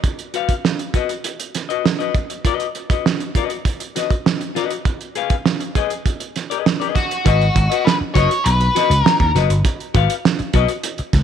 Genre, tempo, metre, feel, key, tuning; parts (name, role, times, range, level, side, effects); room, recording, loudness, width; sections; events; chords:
funk; 100 BPM; 4/4; straight; G# dorian; A4 = 438 Hz
cloth-damped thuddy drum kit; drums; 0.0-11.2 s; hi-hat, kick drum, snare drum; -19 LUFS; right 3 dB
semi-hollow electric guitar; accompaniment; 0.3-11.0 s; F#4 to E#5; -23 LUFS; left 14 dB
octave-fuzz lead guitar; melody; 7.0-9.3 s; F#4 to C#5; -19 LUFS; left 2 dB; distortion
vintage slap bass; bass; 7.3-11.2 s; F#1 to D#2; -16 LUFS; equal
light reverb, small room ambience; 1960s-style stereo; -16 LUFS; side -8 dB against mid
0.0-7.3 A section; 7.3-11.2 B section
0.0 B/F#; 4.9 B6; 7.3 G#m7 (rootless)